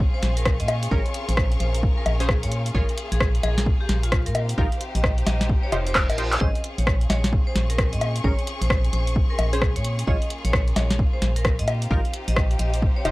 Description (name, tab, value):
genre	UK garage, two-step garage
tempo	131 BPM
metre	4/4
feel	swing 63% on 16ths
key	Bb dorian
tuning	A4 = 439 Hz
part	bright studio violin section	sustained chords	0.0-13.1 s	Bb3 to Bb4	-38 LUFS	equal	sidechain pumping
part	organ-like FM bass	bass	0.0-13.1 s	F1 to Bb2	-24 LUFS	equal	none
part	electronic kick drum	drums	0.0-12.9 s	none	-23 LUFS	equal	none
part	warm symphonic string section	texture	0.0-13.1 s	G4 to Db6	-36 LUFS	left 3 dB	sidechain pumping
part	vibraphone with hard mallets	melody	0.1-13.1 s	F4 to F5	-33 LUFS	equal	tape echo
part	punchy analog drum machine	drums	0.2-13.1 s	bongos, handclaps, hi-hat, rim click, snare drum	-25 LUFS	left 1 dB	none
part	punchy chord stab	stabs	0.9-13.1 s	Db4 to Db5	-30 LUFS	right 1 dB	chorus
part	reverse cymbal	sound effects	5.7-6.4 s	none	-33 LUFS	right 2 dB	none
room	little or no reverb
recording	dry, gritty hardware recording, vinyl crackle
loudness	-20 LUFS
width	side -20 dB against mid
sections	0.0-13.1 A section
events	reverse cymbal 5.7-6.4; drum fill 6.0-6.4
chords	0.0 Bbm7; 4.3 F9sus4; 6.4 Bbm7; 11.7 F9sus4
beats	0.00 0.46 | 0.91 1.37 1.83 2.29 | 2.75 3.20 3.66 4.12 | 4.58 5.04 5.49 5.95 | 6.41 6.87 7.33 7.78 | 8.24 8.70 9.16 9.62 | 10.07 10.53 10.99 11.45 | 11.91 12.36 12.82